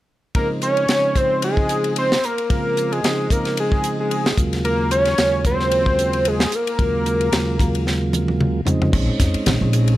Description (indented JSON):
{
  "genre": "electric jazz fusion",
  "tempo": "112 BPM",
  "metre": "4/4",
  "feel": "swing 55% on 16ths",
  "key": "unclear",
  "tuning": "A4 = 441 Hz",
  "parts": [
    { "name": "tight funk drum kit", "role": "drums", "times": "0.3-10.0 s", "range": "crash cymbal, hi-hat, kick drum, ride cymbal, snare drum, toms", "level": "-22 LUFS", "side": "equal", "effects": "none" },
    { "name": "fat analog lead", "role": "melody", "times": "0.4-8.4 s", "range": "Ab4 to Db5", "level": "-20 LUFS", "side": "equal", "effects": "none" },
    { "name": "mellow tonewheel organ", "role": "accompaniment", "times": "0.4-9.9 s", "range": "Eb2 to F4", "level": "-22 LUFS", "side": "right 1 dB", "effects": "slow rotary speaker" },
    { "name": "upright bass", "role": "bass", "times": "8.9-10.0 s", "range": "Bb1 to F2", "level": "-18 LUFS", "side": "equal", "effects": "none" },
    { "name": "congas", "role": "percussion", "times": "8.9-9.6 s", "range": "none", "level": "-24 LUFS", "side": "left 2 dB", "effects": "none" }
  ],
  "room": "light reverb, small room ambience",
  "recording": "none",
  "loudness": "-17 LUFS",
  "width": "side -15 dB against mid",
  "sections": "0.3-8.9 A section; 8.9-10.0 B section",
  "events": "drum fill 7.9-8.9",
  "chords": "0.3 Dbmaj13; 4.4 Ebm11; 8.7 Dbmaj9; 8.9 Bbm11",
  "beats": "| 0.35 0.89 1.42 1.96 | 2.50 3.04 3.57 4.11 | 4.65 5.18 5.72 6.26 | 6.79 7.33 7.86 8.40 | 8.93 9.46"
}